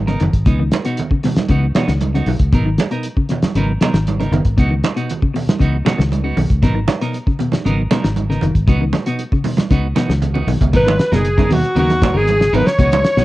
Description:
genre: afrobeat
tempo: 117 BPM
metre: 4/4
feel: straight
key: G# minor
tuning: A4 = 440 Hz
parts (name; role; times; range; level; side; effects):
- fingered electric bass; bass; 0.0-13.2 s; F#1 to D#2; -18 LUFS; equal; none
- clean electric guitar; arpeggios; 0.1-13.2 s; A#2 to D#3; -22 LUFS; left 4 dB; cassette tape
- clean electric guitar; stabs; 0.1-13.2 s; E3 to A#4; -24 LUFS; right 4 dB; harmonic tremolo, cassette tape
- cloth-damped thuddy drum kit; drums; 0.1-13.2 s; hi-hat, kick drum, snare drum; -18 LUFS; equal; cassette tape
- congas; percussion; 0.1-13.2 s; none; -22 LUFS; right 5 dB; none
- breathy alto saxophone; melody; 10.8-13.2 s; F#4 to C#5; -16 LUFS; equal; cassette tape
- bright trumpet; second line; 10.8-13.2 s; F#4 to C#5; -27 LUFS; right 1 dB; cassette tape, tape echo
room: light reverb, small room ambience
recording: home recording on cassette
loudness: -14 LUFS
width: side -17 dB against mid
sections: 0.0-10.7 A section; 10.7-13.2 B section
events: drum fill 10.0-10.7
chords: 0.5 C#m11; 2.5 G#m9; 4.6 C#m11; 6.6 G#m9; 8.7 C#m11; 10.7 G#m9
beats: | 0.47 0.98 1.50 2.01 | 2.52 3.04 3.55 4.06 | 4.58 5.09 5.60 6.12 | 6.63 7.14 7.66 8.17 | 8.68 9.20 9.71 10.22 | 10.74 11.25 11.76 12.28 | 12.79

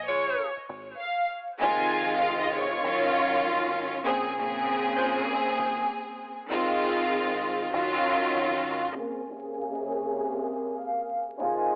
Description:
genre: hip hop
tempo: 98 BPM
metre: 4/4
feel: swing 60% on 16ths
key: Bb minor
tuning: A4 = 440 Hz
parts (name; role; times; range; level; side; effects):
- warm symphonic violin section; melody; 0.0-3.4, 9.0-11.8 s; Db5 to Ab5; -33 LUFS; equal; high-pass filter, low-pass filter, cassette tape, tape echo
- deep dub fingered electric bass; bass; 0.0-8.9 s; F1 to Bb1; -45 LUFS; equal; none
- clear saxophone section; stabs; 0.1-0.5, 5.0-5.4 s; Ab3 to Db5; -34 LUFS; equal; high-pass filter, low-pass filter, cassette tape, tape echo
- warm studio string section; accompaniment; 1.6-11.8 s; C3 to Ab4; -28 LUFS; equal; high-pass filter, low-pass filter, cassette tape
room: moderate spring reverb, RT60 1.8 s, small room ambience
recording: home recording on cassette, vinyl crackle, telephone sound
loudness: -28 LUFS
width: mono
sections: 0.0-9.0 A section; 9.0-11.8 B section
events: break 0.0-1.6; filter sweep 9.0-11.8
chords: 0.0 Bb5; 1.6 Fm7; 2.8 Ebm9/Gb; 4.1 Bbm9; 6.5 Fm7; 7.7 Ebm9/Gb; 9.0 Bbm9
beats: 0.38 0.99 | 1.60 2.22 2.83 3.44 | 4.05 4.67 5.28 5.89 | 6.50 7.12 7.73 8.34 | 8.95 9.56 10.18 10.79 | 11.40

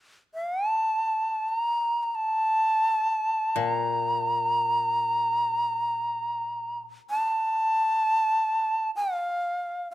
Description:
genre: japanese traditional, Japanese chamber music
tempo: free time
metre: none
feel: none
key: unclear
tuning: A4 = 440 Hz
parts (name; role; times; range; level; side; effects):
- bright long shakuhachi; melody; 0.3-9.9 s; F5 to Bb5; -24 LUFS; equal; none
- koto; accompaniment; 3.6-6.9 s; Bb2; -34 LUFS; left 8 dB; none
room: light reverb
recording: close, detailed microphones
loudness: -24 LUFS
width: side -16 dB against mid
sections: 0.0-9.9 A section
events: none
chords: none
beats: free time

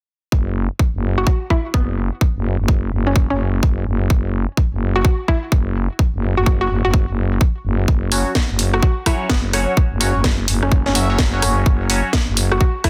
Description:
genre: bass house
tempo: 127 BPM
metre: 4/4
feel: swing 62% on 16ths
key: unclear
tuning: A4 = 441 Hz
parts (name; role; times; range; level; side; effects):
- growling FM bass; bass; 0.3-12.6 s; F#1; -22 LUFS; equal; tube saturation, sidechain pumping
- electronic kick drum; drums; 0.3-12.9 s; none; -18 LUFS; equal; none
- hollow square pluck; melody; 1.2-12.9 s; B3 to F#4; -25 LUFS; equal; chorus, tape echo
- band-passed chord stab; stabs; 8.1-12.9 s; F#3 to E5; -25 LUFS; equal; phaser, sidechain pumping, tape echo
- garage drum kit; drums; 8.1-12.9 s; hi-hat, rim click, snare drum; -23 LUFS; equal; none
room: light reverb, digital ambience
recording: dense, heavily limited modern master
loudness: -18 LUFS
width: mono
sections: 0.3-12.9 A section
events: none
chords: 0.3 F#5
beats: | 0.32 0.80 1.27 1.74 | 2.21 2.68 3.16 3.63 | 4.10 4.57 5.05 5.52 | 5.99 6.46 6.94 7.41 | 7.88 8.35 8.83 9.30 | 9.77 10.24 10.72 11.19 | 11.66 12.13 12.61

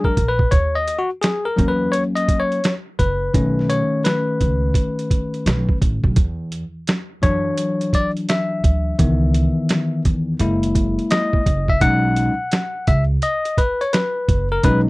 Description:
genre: hip hop, jazz-hop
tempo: 85 BPM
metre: 4/4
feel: swing 66% on 16ths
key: B major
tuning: A4 = 438 Hz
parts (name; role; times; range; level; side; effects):
- bell-like tine electric piano; accompaniment; 0.0-14.9 s; D#3 to F#5; -19 LUFS; left 2 dB; none
- boom bap sampler-style drum kit; drums; 0.0-14.9 s; hi-hat, kick drum, snare drum; -19 LUFS; right 1 dB; none
- upright bass; bass; 0.2-14.9 s; F#1 to F#2; -21 LUFS; right 1 dB; none
room: little or no reverb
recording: dry, close 1970s-style studio recording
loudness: -16 LUFS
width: side -22 dB against mid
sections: 0.0-14.9 A section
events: tine electric piano solo 0.0-14.9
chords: 0.0 E9 (rootless); 0.5 D#m7; 3.3 B7; 6.2 Esus2; 9.0 C#m7; 10.4 F#7; 11.8 B6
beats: | 0.52 1.23 1.93 2.64 | 3.34 4.05 4.76 5.46 | 6.17 6.87 7.58 8.29 | 8.99 9.70 10.40 11.11 | 11.81 12.52 13.23 13.93 | 14.64

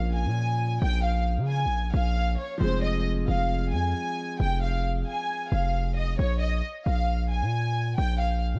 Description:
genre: hip hop, trap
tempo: 134 BPM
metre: 4/4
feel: half-time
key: Bb dorian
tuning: A4 = 440 Hz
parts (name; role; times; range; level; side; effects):
- warm studio violin section; melody; 0.0-8.4 s; C5 to Ab5; -33 LUFS; equal; low-pass filter
- warm concert grand piano; accompaniment; 0.0-6.2 s; F3 to Ab4; -36 LUFS; equal; low-pass filter
- distorted 808-style bass; bass; 0.0-8.6 s; F1 to Db3; -28 LUFS; equal; distortion
room: studio reverb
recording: dark, warm production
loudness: -27 LUFS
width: mono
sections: 0.0-6.2 A section; 6.2-8.6 B section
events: none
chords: 0.0 Bbm7; 2.6 Fm; 6.2 Bb7(no3)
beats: 0.37 | 0.82 1.26 1.71 2.16 | 2.61 3.06 3.50 3.95 | 4.40 4.85 5.29 5.74 | 6.19 6.64 7.08 7.53 | 7.98 8.43

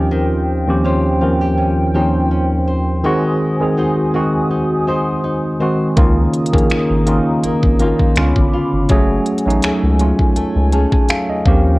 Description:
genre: contemporary R&B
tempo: 82 BPM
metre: 4/4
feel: swing 54% on 16ths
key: unclear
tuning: A4 = 441 Hz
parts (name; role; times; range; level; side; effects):
- tine electric piano; accompaniment; 0.0-11.8 s; Eb2 to A5; -16 LUFS; equal; medium stereo tremolo, cassette tape
- hollow soft pad; sustained chords; 0.0-11.8 s; Eb3 to Eb6; -24 LUFS; equal; chorus, sidechain pumping, cassette tape
- nylon-string guitar; arpeggios; 0.0-11.8 s; Db3 to C5; -23 LUFS; left 2 dB; cassette tape, tape echo
- round analog bass; bass; 6.0-11.8 s; Gb1 to Eb2; -16 LUFS; equal; none
- trap drum kit; drums; 6.0-11.6 s; finger snaps, hi-hat, kick drum; -15 LUFS; equal; cassette tape
room: little or no reverb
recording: home recording on cassette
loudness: -13 LUFS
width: side -21 dB against mid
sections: 0.0-11.8 A section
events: tine electric piano fill 10.4-11.8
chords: 0.0 Eb13; 3.0 Ab7; 6.0 Db69; 8.2 Db7b9; 8.9 Gbmadd9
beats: | 0.12 0.85 1.58 2.31 | 3.04 3.77 4.51 5.24 | 5.97 6.70 7.43 8.16 | 8.90 9.63 10.36 11.09

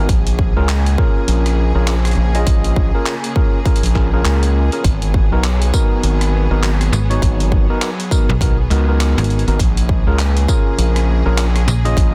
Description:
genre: glitch hop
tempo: 101 BPM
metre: 4/4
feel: swing 59% on 16ths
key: unclear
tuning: A4 = 440 Hz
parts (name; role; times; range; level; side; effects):
- clear symphonic string section; sustained chords; 0.0-12.1 s; C#3 to G#4; -29 LUFS; equal; sidechain pumping
- overdriven tine electric piano; stabs; 0.0-12.1 s; B3 to D#5; -25 LUFS; equal; sidechain pumping, delay
- gritty driven synth bass; bass; 0.0-12.1 s; G#1 to C#2; -17 LUFS; equal; overdrive
- boom bap sampler-style drum kit; drums; 0.1-12.1 s; handclaps, hi-hat, rim click, tambourine; -28 LUFS; equal; none
- electronic kick drum; drums; 0.1-12.1 s; none; -18 LUFS; equal; none
- slap-like FM bass; bass; 6.9-12.0 s; G#1 to B1; -18 LUFS; equal; none
room: little or no reverb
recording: dense, heavily limited modern master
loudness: -16 LUFS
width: mono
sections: 0.0-12.1 A section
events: none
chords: 0.1 A#m7; 4.8 G#m7; 9.6 A#m7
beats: | 0.09 0.69 1.28 1.88 | 2.47 3.06 3.66 4.25 | 4.84 5.44 6.03 6.63 | 7.22 7.82 8.41 9.00 | 9.60 10.19 10.79 11.38 | 11.97

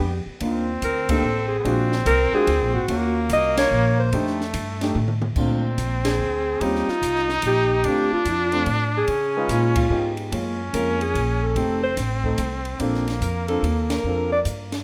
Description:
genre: jazz, small-group swing and bop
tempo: 145 BPM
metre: 3/4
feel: swing 65% on 8ths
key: unclear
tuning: A4 = 440 Hz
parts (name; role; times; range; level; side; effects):
- mellow alto saxophone; melody; 0.0-14.4 s; F4 to Eb5; -26 LUFS; equal; none
- breathy trumpet; second line; 0.0-14.8 s; A3 to Eb4; -30 LUFS; equal; none
- upright bass; bass; 0.0-14.8 s; F1 to Db3; -28 LUFS; equal; none
- open jazz drum kit; drums; 0.0-14.8 s; crash cymbal, hi-hat, kick drum, ride cymbal, snare drum, toms; -34 LUFS; equal; none
- warm grand piano; accompaniment; 0.4-14.3 s; G3 to Cb5; -29 LUFS; equal; none
room: moderate large studio reverb, RT60 1.2 s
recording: none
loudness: -22 LUFS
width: mono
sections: 0.0-5.4 A section; 5.4-14.8 B section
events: band accent 1.0, 3.5, 6.0, 9.7, 13.8; drum fill 5.0-5.4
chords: 0.4 Cm11; 1.7 Bb7b13; 2.9 Ebm9; 4.1 F13; 5.4 Bbmaj9; 6.6 Eb13; 7.8 Dm7; 9.1 Db9; 10.3 Gbmaj9; 11.6 F7; 12.8 Bbmaj9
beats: 0.00 | 0.41 0.83 1.24 | 1.65 2.06 2.48 | 2.89 3.30 3.71 | 4.13 4.54 4.95 | 5.36 5.78 6.19 | 6.60 7.02 7.43 | 7.84 8.26 8.67 | 9.08 9.50 9.91 | 10.32 10.74 11.15 | 11.56 11.98 12.39 | 12.80 13.22 13.63 | 14.04 14.45

